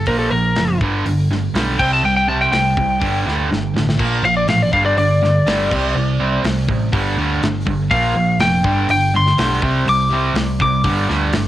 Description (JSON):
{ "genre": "hard rock", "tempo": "123 BPM", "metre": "4/4", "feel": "straight", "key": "unclear", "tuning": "A4 = 441 Hz", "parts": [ { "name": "lightly driven lead guitar", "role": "melody", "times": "0.0-11.5 s", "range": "A4 to D6", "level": "-18 LUFS", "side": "left 1 dB", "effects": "cassette tape, plate reverb, tape echo" }, { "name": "cranked stack guitar", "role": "riff", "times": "0.0-11.5 s", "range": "G2 to C4", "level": "-26 LUFS", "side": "left 8 dB", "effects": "overdrive, cassette tape" }, { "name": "distorted electric guitar", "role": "riff", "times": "0.0-11.5 s", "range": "G2 to C4", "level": "-20 LUFS", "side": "right 5 dB", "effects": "distortion, cassette tape" }, { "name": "overdriven picked electric bass", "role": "bass", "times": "0.0-11.5 s", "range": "F1 to D2", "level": "-21 LUFS", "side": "equal", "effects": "none" }, { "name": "tight metal drum kit", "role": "drums", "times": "0.1-11.4 s", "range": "crash cymbal, hi-hat, kick drum, snare drum", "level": "-24 LUFS", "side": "equal", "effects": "cassette tape" } ], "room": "light reverb", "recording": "home recording on cassette", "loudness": "-14 LUFS", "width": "side -13 dB against mid", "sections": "0.0-11.5 A section", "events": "lead electric guitar solo 0.0-11.5; drum fill 3.5-4.0", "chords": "0.1 Bb5; 0.8 G5; 1.8 C5; 3.0 G5; 4.0 Bb5; 4.7 G5; 5.7 C5; 6.9 G5; 7.9 Bb5; 8.6 G5; 9.6 C5; 10.8 G5" }